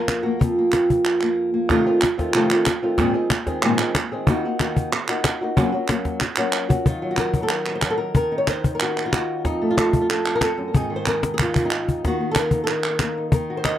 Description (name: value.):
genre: flamenco.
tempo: 186 BPM.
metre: 4/4.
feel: straight.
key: unclear.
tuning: A4 = 442 Hz.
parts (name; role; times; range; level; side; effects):
flamenco guitar; melody; 0.0-13.8 s; F2 to Eb5; -21 LUFS; equal; tape echo.
cajon; percussion; 0.1-13.8 s; none; -21 LUFS; left 2 dB; none.
palmas hand claps; percussion; 0.1-13.8 s; none; -25 LUFS; right 4 dB; none.
room: moderate booth ambience, RT60 0.2 s.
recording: dry, close 1970s-style studio recording.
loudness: -19 LUFS.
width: side -11 dB against mid.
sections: 0.0-1.7 A section; 1.7-6.9 B section; 6.9-13.8 C section.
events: break 1.4-1.7; drum fill 6.2-6.9, 11.1-12.0.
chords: 0.0 Fsus4; 1.7 F7; 3.0 Abadd9; 4.3 Ebm; 5.6 Gb; 6.9 Ebm; 9.4 F; 10.7 Ab; 12.0 Ebm.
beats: 0.09 | 0.41 0.73 1.06 1.38 | 1.70 2.03 2.35 2.67 | 2.99 3.32 3.64 3.96 | 4.28 4.61 4.93 5.25 | 5.57 5.89 6.22 6.54 | 6.86 7.19 7.51 7.83 | 8.15 8.48 8.80 9.12 | 9.45 9.77 10.09 10.42 | 10.74 11.06 11.38 11.71 | 12.03 12.35 12.68 13.00 | 13.32 13.64.